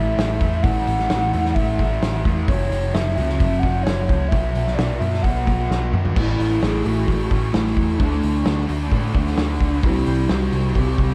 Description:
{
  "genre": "rock, shoegaze and dream pop",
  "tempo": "130 BPM",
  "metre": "4/4",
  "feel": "straight",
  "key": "unclear",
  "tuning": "A4 = 439 Hz",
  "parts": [
    { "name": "reedy FM lead", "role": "melody", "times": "0.0-11.1 s", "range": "D4 to F#5", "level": "-28 LUFS", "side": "equal", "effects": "chorus, analog delay" },
    { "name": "thick fuzz guitar", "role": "riff", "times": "0.0-11.1 s", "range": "F#2 to D4", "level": "-26 LUFS", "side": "equal", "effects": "distortion, subtle chorus" },
    { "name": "deep dub picked electric bass", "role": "bass", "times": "0.0-11.1 s", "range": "F#1 to A2", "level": "-25 LUFS", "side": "equal", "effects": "none" },
    { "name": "loose indie drum kit", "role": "drums", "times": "0.2-11.1 s", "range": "crash cymbal, hi-hat, kick drum, snare drum, toms", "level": "-25 LUFS", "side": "equal", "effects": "none" }
  ],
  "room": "moderate huge ambient reverb, RT60 3.8 s",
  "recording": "dreamy mix soaked in reverb",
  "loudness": "-20 LUFS",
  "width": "mono",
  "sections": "0.0-6.2 A section; 6.2-11.1 B section",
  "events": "drum fill 5.7-6.2",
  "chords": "0.0 A5; 2.5 F#5; 4.3 B5; 6.2 A5; 8.0 D5; 9.8 C",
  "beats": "0.18 | 0.64 1.10 1.56 2.02 | 2.48 2.94 3.40 3.86 | 4.32 4.78 5.24 5.70 | 6.16 6.62 7.08 7.54 | 8.00 8.46 8.92 9.38 | 9.84 10.29 10.75"
}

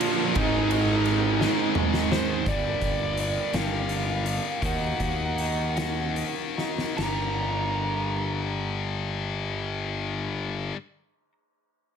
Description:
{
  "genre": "quiet-loud alternative rock",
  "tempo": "48-57 BPM (dotted quarters)",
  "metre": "6/8",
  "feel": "straight",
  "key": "G phrygian",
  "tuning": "A4 = 443 Hz",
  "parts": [
    { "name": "bluesy overdriven lead guitar", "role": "melody", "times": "0.0-10.7 s", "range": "F3 to Bb5", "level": "-30 LUFS", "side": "right 2 dB", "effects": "distortion, plate reverb" },
    { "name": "heavy high-gain guitar", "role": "riff", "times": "0.0-10.8 s", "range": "G2 to Eb4", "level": "-30 LUFS", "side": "left 12 dB", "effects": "distortion" },
    { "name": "high-gain distorted guitar", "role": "riff", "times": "0.0-2.5 s", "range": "Ab2 to Bb3", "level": "-34 LUFS", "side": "right 1 dB", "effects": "distortion" },
    { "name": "overdriven electric guitar", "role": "riff", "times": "0.0-2.5 s", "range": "Ab2 to Eb4", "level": "-27 LUFS", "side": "right 15 dB", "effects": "none" },
    { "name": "oversized low-tuned drum kit", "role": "drums", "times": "0.0-7.2 s", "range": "crash cymbal, hi-hat, kick drum, ride cymbal, snare drum, toms", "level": "-30 LUFS", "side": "equal", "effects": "none" },
    { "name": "fuzz fingered electric bass", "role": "bass", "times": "0.4-10.7 s", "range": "G1 to Eb2", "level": "-30 LUFS", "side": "equal", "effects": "overdrive" },
    { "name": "electric guitar through a small old amp", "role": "arpeggios", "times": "2.5-10.8 s", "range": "G2 to G4", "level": "-36 LUFS", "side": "equal", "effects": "lush chorus, plate reverb" }
  ],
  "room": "light reverb",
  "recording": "none",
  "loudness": "-24 LUFS",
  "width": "side -7 dB against mid",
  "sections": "0.0-2.5 A section; 2.5-7.0 B section; 7.0-12.0 C section",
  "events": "drum fill 1.4-2.5, 6.6-7.0; slowing down 2.5-7.0",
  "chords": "0.4 Ab; 2.5 Gm; 4.6 Ebm; 7.0 Gm",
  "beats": "| 0.37 1.42 | 2.48 3.54 | 4.63 5.77 | 6.98 8.22 | 9.47 10.72"
}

